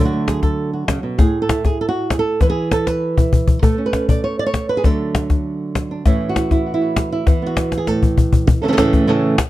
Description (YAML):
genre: flamenco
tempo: 198 BPM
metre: 4/4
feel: straight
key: A major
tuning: A4 = 440 Hz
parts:
  - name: flamenco guitar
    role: melody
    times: 0.0-9.4 s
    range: A2 to D5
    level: -18 LUFS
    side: right 2 dB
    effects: none
  - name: cajon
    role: percussion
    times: 0.1-9.5 s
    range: none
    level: -16 LUFS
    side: left 2 dB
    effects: none
room: light reverb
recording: close, detailed microphones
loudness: -15 LUFS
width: side -15 dB against mid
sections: 0.0-8.5 A section; 8.5-9.5 B section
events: drum fill 2.9-3.6, 7.7-8.5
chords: 0.0 D; 1.2 A5; 2.4 N.C.; 3.6 A; 4.8 D; 6.1 A; 7.3 E5; 7.9 A5; 8.5 A